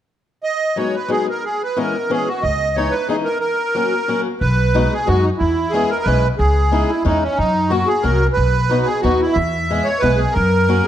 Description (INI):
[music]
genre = musette waltz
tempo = 182 BPM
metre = 3/4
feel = swing 54% on 8ths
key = B major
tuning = A4 = 442 Hz
[part]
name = accordion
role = melody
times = 0.4-10.9 s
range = C#4 to E5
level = -18 LUFS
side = right 2 dB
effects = light tremolo tuning
[part]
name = picked swing-style acoustic guitar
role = accompaniment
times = 0.8-10.9 s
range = E3 to G#4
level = -22 LUFS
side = left 4 dB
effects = none
[part]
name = upright bass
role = bass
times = 2.4-10.8 s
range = B1 to F#2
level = -18 LUFS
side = equal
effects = none
[sound]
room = moderate recital hall reverb, RT60 1.4 s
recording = dark, warm production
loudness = -15 LUFS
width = side -11 dB against mid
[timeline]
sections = 0.4-4.4 A section; 4.4-10.9 B section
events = none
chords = 0.4 B6; 1.4 E6; 2.4 C#madd9; 3.4 F#; 4.4 B6; 5.4 E6; 6.4 C#madd9; 7.4 F#; 8.4 B; 9.4 E; 10.4 F#add9